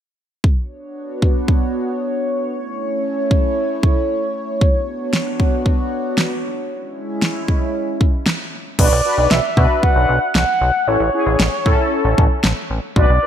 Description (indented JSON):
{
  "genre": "synth-pop",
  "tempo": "115 BPM",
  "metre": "4/4",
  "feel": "straight",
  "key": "B dorian",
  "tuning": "A4 = 440 Hz",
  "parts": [
    { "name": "chorused pulse-width pad", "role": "sustained chords", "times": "0.4-8.8 s", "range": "G#3 to C#5", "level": "-21 LUFS", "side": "equal", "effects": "none" },
    { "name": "pop drum kit", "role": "drums", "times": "0.4-13.1 s", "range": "crash cymbal, kick drum, snare drum", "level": "-16 LUFS", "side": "equal", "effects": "none" },
    { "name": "mellow horn-like synth lead", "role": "melody", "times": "8.8-13.3 s", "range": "C#5 to F#5", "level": "-18 LUFS", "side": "equal", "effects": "chorus, ping-pong delay" },
    { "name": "mellow synth brass", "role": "accompaniment", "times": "8.8-13.3 s", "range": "C#4 to B4", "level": "-21 LUFS", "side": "equal", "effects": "chorus" },
    { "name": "chorused synth bass", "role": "bass", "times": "8.8-13.2 s", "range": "A1 to B2", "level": "-18 LUFS", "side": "equal", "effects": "none" }
  ],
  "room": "moderate plate reverb, RT60 2.3 s",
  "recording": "bright 1980s-style digital production",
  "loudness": "-15 LUFS",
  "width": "side -9 dB against mid",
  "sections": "0.4-8.8 A section; 8.8-13.3 B section",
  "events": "none",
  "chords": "0.4 Bmadd9; 2.5 A; 4.6 Bmadd9; 6.7 C#m; 8.8 Bm; 10.9 A"
}